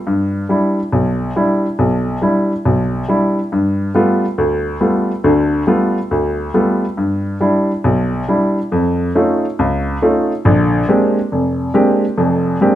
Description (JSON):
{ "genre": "jazz", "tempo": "138 BPM", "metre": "4/4", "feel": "swing 66% on 8ths", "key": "unclear", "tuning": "A4 = 441 Hz", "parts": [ { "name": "warm baby grand piano", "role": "solo", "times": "0.1-12.8 s", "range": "F1 to G4", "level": "-13 LUFS", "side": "equal", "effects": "none" } ], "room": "moderate large studio reverb, RT60 1.1 s", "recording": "none", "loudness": "-13 LUFS", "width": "side -12 dB against mid", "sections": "0.0-10.4 A section; 10.4-12.8 B section", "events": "none", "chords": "0.0 Em7; 3.5 G9; 7.0 Em7/G; 8.7 Faug7; 10.4 Bb13" }